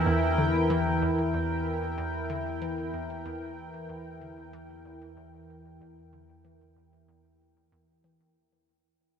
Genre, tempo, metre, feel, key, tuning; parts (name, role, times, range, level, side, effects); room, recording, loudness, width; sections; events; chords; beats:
ambient; 94 BPM; 4/4; straight; A4 = 439 Hz
sweeping resonant pad; sustained chords; 0.0-8.4 s; E3 to G5; -30 LUFS; equal; chorus
analog drone; bass; 0.0-8.3 s; E2; -36 LUFS; right 1 dB; chorus
hollow square pluck; riff; 0.1-8.2 s; E2 to E3; -35 LUFS; left 1 dB; chorus, ping-pong delay
wet huge ambient reverb, RT60 8.8 s; cassette tape; -27 LUFS; side -7 dB against mid
0.0-8.4 A section
fade-out on synth arpeggio sound 0.0-8.4; fade-out 0.0-8.4
0.0 Edim
0.06 | 0.70 1.34 1.98 2.62 | 3.25 3.89 4.53 5.17 | 5.81 6.45 7.08 7.72